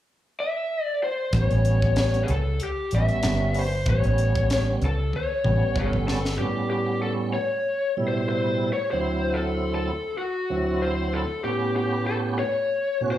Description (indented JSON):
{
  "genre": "straight-eighth soul blues",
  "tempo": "95 BPM",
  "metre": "4/4",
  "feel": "swing 55% on 16ths",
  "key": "A mixolydian",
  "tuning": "A4 = 438 Hz",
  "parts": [
    { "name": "lead guitar through a small cranked amp", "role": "melody", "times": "0.4-13.2 s", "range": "F#4 to E5", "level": "-26 LUFS", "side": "left 2 dB", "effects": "overdrive, slapback echo" },
    { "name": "tonewheel organ", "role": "accompaniment", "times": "1.3-13.2 s", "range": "D2 to G4", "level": "-27 LUFS", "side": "right 3 dB", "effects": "slow rotary speaker, overdrive, chorus vibrato" },
    { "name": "vintage muted fingered electric bass", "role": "bass", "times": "1.3-6.4 s", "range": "G1 to C#2", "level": "-23 LUFS", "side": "equal", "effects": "none" },
    { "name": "tight funk drum kit", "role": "drums", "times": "1.3-6.4 s", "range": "hi-hat, kick drum, snare drum, toms", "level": "-29 LUFS", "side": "equal", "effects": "none" }
  ],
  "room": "light reverb",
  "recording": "live gig heard through the venue's PA, club reverb",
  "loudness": "-22 LUFS",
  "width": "side -12 dB against mid",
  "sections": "0.0-1.3 A section; 1.3-6.4 B section; 6.4-13.2 C section",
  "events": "drum fill 5.1-6.4",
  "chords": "0.0 N.C.; 1.3 A7; 6.4 A9; 8.9 D9; 11.4 A9",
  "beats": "0.07 0.70 | 1.34 1.97 2.60 3.24 | 3.87 4.50 5.13 5.77 | 6.40 7.03 7.66 8.29 | 8.92 9.55 10.19 10.82 | 11.45 12.08 12.71"
}